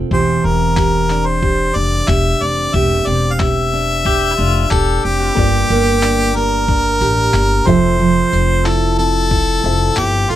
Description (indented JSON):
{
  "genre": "acoustic pop",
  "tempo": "91 BPM",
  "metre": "4/4",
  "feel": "straight",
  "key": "unclear",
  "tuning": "A4 = 440 Hz",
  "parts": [
    { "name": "fingerpicked steel-string acoustic guitar", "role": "accompaniment", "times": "0.0-10.4 s", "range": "G2 to A4", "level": "-18 LUFS", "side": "right 4 dB", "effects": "none" },
    { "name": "upright bass", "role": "bass", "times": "0.0-10.4 s", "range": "E1 to A1", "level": "-18 LUFS", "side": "left 1 dB", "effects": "none" },
    { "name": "bright harmonica", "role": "melody", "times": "0.1-10.4 s", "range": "F4 to F5", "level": "-17 LUFS", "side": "left 1 dB", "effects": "none" },
    { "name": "dusty soul sampler-style drum kit", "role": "drums", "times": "0.1-10.4 s", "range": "handclaps, kick drum, tambourine", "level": "-20 LUFS", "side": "left 1 dB", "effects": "none" },
    { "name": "pedal steel guitar", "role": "second line", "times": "4.1-5.3 s", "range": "E4 to G4", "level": "-22 LUFS", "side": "left 8 dB", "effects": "none" },
    { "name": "warm upright piano", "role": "accompaniment", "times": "5.3-10.4 s", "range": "Bb3 to E5", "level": "-26 LUFS", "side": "left 5 dB", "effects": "none" }
  ],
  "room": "little or no reverb",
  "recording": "close, detailed microphones",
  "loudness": "-12 LUFS",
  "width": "side -12 dB against mid",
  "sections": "0.0-5.4 A section; 5.4-10.4 B section",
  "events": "none",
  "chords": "0.1 Cadd9/E; 5.4 Gm7; 7.7 Fmaj7"
}